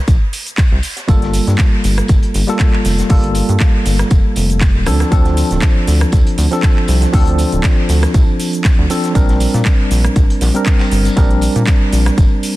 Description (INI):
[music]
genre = deep house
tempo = 119 BPM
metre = 4/4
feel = swing 54% on 16ths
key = G minor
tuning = A4 = 440 Hz
[part]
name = rubbery square bass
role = bass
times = 0.1-12.3 s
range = D1 to Bb2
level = -15 LUFS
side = equal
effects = sidechain pumping
[part]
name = crunchy breakbeat drum kit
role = drums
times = 0.1-12.6 s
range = hi-hat, snare drum, tambourine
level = -32 LUFS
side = equal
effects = high-pass filter on hats, high-pass filter on snare, high-pass filter on perc, high-pass filter on room
[part]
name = electronic kick drum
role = drums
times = 0.1-12.3 s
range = none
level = -12 LUFS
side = equal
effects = none
[part]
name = house drum kit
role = drums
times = 0.1-12.5 s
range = cabasa, handclaps, hi-hat, rim click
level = -23 LUFS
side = right 1 dB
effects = none
[part]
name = tine electric piano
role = stabs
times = 1.1-12.6 s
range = F3 to Bb4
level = -18 LUFS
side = equal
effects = medium stereo tremolo, vintage 12-bit sampler grit, sidechain pumping, ping-pong delay
[sound]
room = studio reverb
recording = dense, heavily limited modern master, vinyl crackle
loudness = -11 LUFS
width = side -17 dB against mid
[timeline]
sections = 0.0-12.6 A section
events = none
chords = 0.0 C5; 1.1 Gm9; 4.9 Dm7; 9.2 Bb69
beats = 0.08 0.58 | 1.08 1.59 2.09 2.60 | 3.10 3.61 4.11 4.61 | 5.12 5.62 6.13 6.63 | 7.13 7.64 8.14 8.65 | 9.15 9.66 10.16 10.66 | 11.17 11.67 12.18